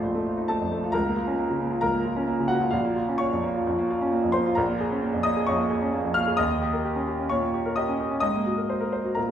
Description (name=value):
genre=classical, virtuoso piano study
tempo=132 BPM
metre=4/4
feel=rubato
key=Bb minor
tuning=A4 = 440 Hz
part: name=clear concert grand piano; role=solo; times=0.0-9.3 s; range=Bb1 to F6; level=-23 LUFS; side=equal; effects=none
room=wet recital hall reverb, RT60 1.7 s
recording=recorded in a church or concert hall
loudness=-23 LUFS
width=side -9 dB against mid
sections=0.0-9.3 A section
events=none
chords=0.0 F7/Bb; 0.9 Bbm/Db; 2.7 Bbm; 4.6 Bbm7; 6.4 Eb7; 8.2 Ab9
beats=0.04 0.50 | 0.95 1.39 1.84 2.29 | 2.73 3.21 3.67 4.12 | 4.57 5.03 5.48 5.94 | 6.39 6.85 7.31 7.77 | 8.24 8.70 9.17